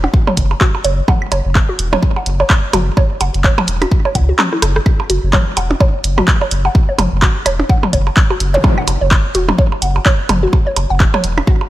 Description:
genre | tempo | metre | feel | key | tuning
minimal techno | 127 BPM | 4/4 | swing 58% on 16ths | unclear | A4 = 440 Hz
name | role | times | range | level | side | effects
hollow square pluck | riff | 0.0-11.5 s | C#4 to F#5 | -20 LUFS | right 1 dB | chorus, vintage 12-bit sampler grit, sidechain pumping, dub echo
saturated sub bass | bass | 0.0-11.4 s | E1 to C#2 | -16 LUFS | equal | sidechain pumping
electronic percussion blips, toms and claves | percussion | 0.0-11.7 s | none | -19 LUFS | right 2 dB | studio reverb, digital delay
electronic kick drum | drums | 0.1-11.6 s | none | -13 LUFS | equal | studio reverb
punchy analog drum machine | drums | 0.4-11.3 s | handclaps, hi-hat, rim click | -18 LUFS | equal | studio reverb
zap | sound effects | 8.5-8.6 s | none | -22 LUFS | equal | none
room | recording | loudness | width
digital ambience | none | -11 LUFS | side -15 dB against mid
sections
0.0-11.7 A section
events
kick drops out 4.4-4.9; drum fill 4.5-4.9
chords
0.0 F#5

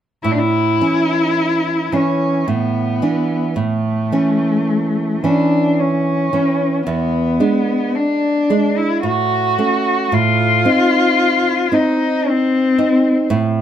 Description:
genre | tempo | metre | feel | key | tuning
romantic duo for cello and classical guitar | 55 BPM | 3/4 | rubato | A major | A4 = 440 Hz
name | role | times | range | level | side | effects
warm cello | melody | 0.2-13.3 s | A3 to F#4 | -17 LUFS | left 2 dB | plate reverb
nylon-string guitar | accompaniment | 0.2-13.6 s | E2 to Eb4 | -17 LUFS | right 2 dB | none
room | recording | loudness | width
moderate studio reverb, RT60 0.6 s | none | -14 LUFS | side -10 dB against mid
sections
0.2-13.6 A section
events
none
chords
0.2 A; 2.5 E5/A; 3.6 A; 6.9 E7; 9.0 A; 10.1 Adim

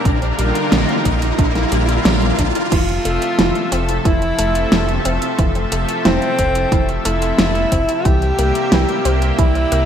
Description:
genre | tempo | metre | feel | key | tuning
synthwave | 90 BPM | 4/4 | straight | F major | A4 = 440 Hz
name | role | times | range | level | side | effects
lush unison pad | sustained chords | 0.0-9.9 s | C3 to E5 | -21 LUFS | left 1 dB | chorus, sidechain pumping
riser | sound effects | 0.0-2.7 s | none | -22 LUFS | left 1 dB | none
analog pluck | arpeggios | 0.1-9.9 s | D3 to C4 | -24 LUFS | right 4 dB | chorus, digital delay
round analog bass | bass | 0.1-9.9 s | F1 to C2 | -20 LUFS | equal | tube saturation
electronic kick drum | drums | 0.1-9.5 s | none | -18 LUFS | equal | overdrive
pop drum kit | drums | 0.1-9.9 s | crash cymbal, hi-hat, snare drum | -19 LUFS | equal | overdrive, gated reverb
breathy alto saxophone | melody | 2.7-9.9 s | C4 to G4 | -20 LUFS | equal | ping-pong delay
room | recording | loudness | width
moderate plate reverb, RT60 1.6 s | bright 1980s-style digital production | -14 LUFS | side -8 dB against mid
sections
0.0-2.7 A section; 2.7-9.9 B section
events
riser 0.0-2.7; filter sweep on synth arpeggio sound 0.0-2.7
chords
0.1 Bb6; 2.7 Fmaj7; 8.1 C7

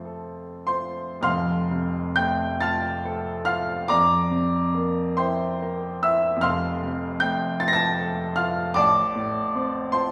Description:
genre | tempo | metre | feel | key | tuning
classical, romantic nocturne for solo piano | 31-53 BPM (dotted quarters) | 12/8 | rubato | F major | A4 = 440 Hz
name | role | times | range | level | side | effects
clear baby grand piano | solo | 0.0-10.1 s | F1 to Bb6 | -24 LUFS | equal | none
room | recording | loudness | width
wet recital hall reverb, RT60 1.3 s | recorded in a church or concert hall, small room ambience | -24 LUFS | mono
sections
0.0-1.2 A section; 1.2-10.1 B section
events
none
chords
0.0 F; 3.9 C7/F; 6.4 F; 8.8 F/A

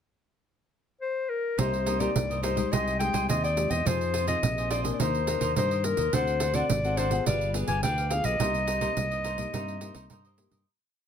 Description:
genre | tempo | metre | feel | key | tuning
samba and choro | 106 BPM | 4/4 | straight | C minor | A4 = 440 Hz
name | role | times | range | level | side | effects
clear clarinet | melody | 1.0-10.4 s | Bb4 to Ab5 | -29 LUFS | left 3 dB | none
cavaquinho | accompaniment | 1.6-10.7 s | D4 to G5 | -34 LUFS | right 3 dB | none
nylon-string guitar | accompaniment | 1.6-10.6 s | G2 to Bb4 | -34 LUFS | left 5 dB | none
fingered electric bass | bass | 1.6-10.6 s | G1 to G2 | -31 LUFS | equal | none
pandeiro | percussion | 1.6-10.7 s | none | -31 LUFS | right 5 dB | none
room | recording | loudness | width
light reverb | none | -25 LUFS | side -8 dB against mid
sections
0.0-1.6 pickup bar; 1.6-10.7 A section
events
fade-out 8.4-10.7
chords
0.0 N.C.; 1.6 Cm7; 2.7 Abmaj7/C; 3.9 Fm7; 5.0 Cm9/Eb; 6.1 D7; 7.3 G7b9; 8.4 Cm7

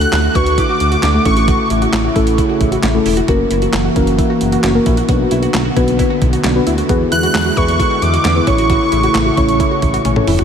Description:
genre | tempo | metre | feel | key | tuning
synth-pop | 133 BPM | 4/4 | straight | unclear | A4 = 442 Hz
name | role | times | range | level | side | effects
wide unison lead | melody | 0.0-1.7, 7.1-10.1 s | C#6 to F#6 | -19 LUFS | right 1 dB | tape echo, shimmer reverb
muted felt-like synth keys | accompaniment | 0.0-10.4 s | A3 to C#5 | -18 LUFS | left 2 dB | chorus, shimmer reverb
chorused pulse-width pad | sustained chords | 0.0-10.4 s | C#3 to F#4 | -19 LUFS | equal | shimmer reverb
wide unison pluck | arpeggios | 0.0-10.4 s | C#4 to F#4 | -23 LUFS | right 2 dB | lush chorus, tape echo, shimmer reverb
smooth synth bass | bass | 0.0-10.4 s | E1 to E2 | -18 LUFS | equal | none
clean 12-bit digital drum machine | drums | 0.0-10.4 s | handclaps, hi-hat, kick drum, snare drum, toms | -18 LUFS | equal | none
room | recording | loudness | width
moderate huge ambient reverb, RT60 8.1 s | dreamy mix soaked in reverb | -11 LUFS | side -8 dB against mid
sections
0.0-10.4 A section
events
drum fill 10.1-10.4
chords
0.0 D; 1.3 A; 3.3 F#7; 5.1 Bm; 6.9 E7; 8.5 A

